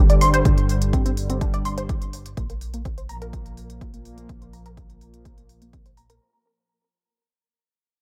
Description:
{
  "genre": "melodic techno",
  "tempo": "125 BPM",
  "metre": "4/4",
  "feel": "straight",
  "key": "unclear",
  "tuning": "A4 = 441 Hz",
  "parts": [
    { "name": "brassy analog pad", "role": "stabs", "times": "0.0-5.8 s", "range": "G2 to Bb3", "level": "-30 LUFS", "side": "equal", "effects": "chorus, sidechain pumping, digital delay" },
    { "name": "plucky analog bass", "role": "bass", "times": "0.0-6.2 s", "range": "G1 to Bb1", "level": "-30 LUFS", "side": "equal", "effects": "sidechain pumping" },
    { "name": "tight sequenced synth", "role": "arpeggios", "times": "0.1-6.2 s", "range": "Bb3 to C6", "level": "-28 LUFS", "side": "equal", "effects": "chorus, sidechain pumping, digital delay" },
    { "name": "electronic hi-hat", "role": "drums", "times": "0.1-6.2 s", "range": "none", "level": "-38 LUFS", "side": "equal", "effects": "none" },
    { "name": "electronic kick drum", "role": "drums", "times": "0.5-5.8 s", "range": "none", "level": "-22 LUFS", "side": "equal", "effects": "none" }
  ],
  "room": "little or no reverb",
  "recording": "none",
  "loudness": "-22 LUFS",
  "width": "mono",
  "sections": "0.0-6.2 A section",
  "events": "fade-out 0.0-6.2; filter sweep on synth arpeggio sound 0.0-6.2; filter sweep on analog synth pad 0.0-6.2",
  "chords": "0.0 Gsus4; 2.4 Bb5",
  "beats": "| 0.45 0.93 1.41 1.89 | 2.37 2.85 3.33 3.81 | 4.29 4.77 5.25 5.73"
}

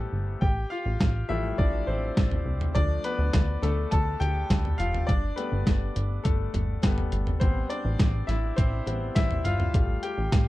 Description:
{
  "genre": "piano-driven pop",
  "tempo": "103 BPM",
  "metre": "4/4",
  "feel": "straight",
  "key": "unclear",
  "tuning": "A4 = 440 Hz",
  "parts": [
    { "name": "bright grand piano", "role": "accompaniment", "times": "0.0-10.5 s", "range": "C3 to A5", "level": "-31 LUFS", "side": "left 2 dB", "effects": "none" },
    { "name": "plucky analog bass", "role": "bass", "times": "0.0-10.5 s", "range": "F1 to D2", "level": "-28 LUFS", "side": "equal", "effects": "none" },
    { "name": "dusty soul sampler-style drum kit", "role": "drums", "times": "0.4-10.5 s", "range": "hi-hat, kick drum, snare drum, toms", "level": "-25 LUFS", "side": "equal", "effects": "none" }
  ],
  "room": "little or no reverb",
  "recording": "dark, warm production",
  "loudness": "-24 LUFS",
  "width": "side -17 dB against mid",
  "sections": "0.0-10.5 A section",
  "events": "grand piano solo 0.0-10.5",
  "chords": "0.4 Fadd9/A; 2.8 Dm; 5.1 Gadd9; 7.4 Am7; 9.7 Fadd9/A",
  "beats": "| 0.42 1.00 1.59 2.17 | 2.75 3.33 3.92 4.50 | 5.08 5.66 6.25 6.83 | 7.41 7.99 8.58 9.16 | 9.74 10.32"
}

